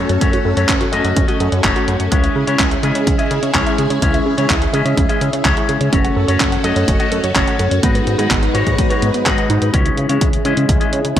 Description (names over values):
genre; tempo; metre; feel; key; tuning
italo disco; 126 BPM; 4/4; straight; C# minor; A4 = 441 Hz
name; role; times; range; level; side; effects
string machine, full ensemble; sustained chords; 0.0-11.2 s; G#3 to B4; -21 LUFS; equal; ensemble chorus
warbly dusty pluck; arpeggios; 0.0-11.2 s; B3 to F#5; -23 LUFS; right 4 dB; chorus, tape echo
electric guitar with an envelope filter; stabs; 0.0-11.2 s; G#3 to D#5; -21 LUFS; left 4 dB; spring reverb, tape echo
chorused synth bass; bass; 0.0-11.2 s; F#1 to C#3; -20 LUFS; equal; tube saturation
clean 12-bit digital drum machine; drums; 0.1-11.2 s; handclaps, hi-hat, toms; -21 LUFS; equal; high-pass filter on hats, high-pass filter on cymbals, high-pass filter on snare, high-pass filter on toms, high-pass filter on room, gated reverb
electronic kick drum; drums; 0.2-11.2 s; none; -18 LUFS; equal; overdrive
room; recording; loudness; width
light reverb, digital ambience; none; -13 LUFS; side -10 dB against mid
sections
0.0-9.7 A section; 9.7-11.2 B section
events
drum fill 9.7-11.2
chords
0.0 F#m; 2.1 C#m; 5.9 F#m; 7.8 G#m7; 9.7 C#m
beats
| 0.21 0.69 1.17 1.64 | 2.12 2.59 3.07 3.55 | 4.02 4.50 4.97 5.45 | 5.93 6.40 6.88 7.36 | 7.83 8.31 8.78 9.26 | 9.74 10.21 10.69 11.16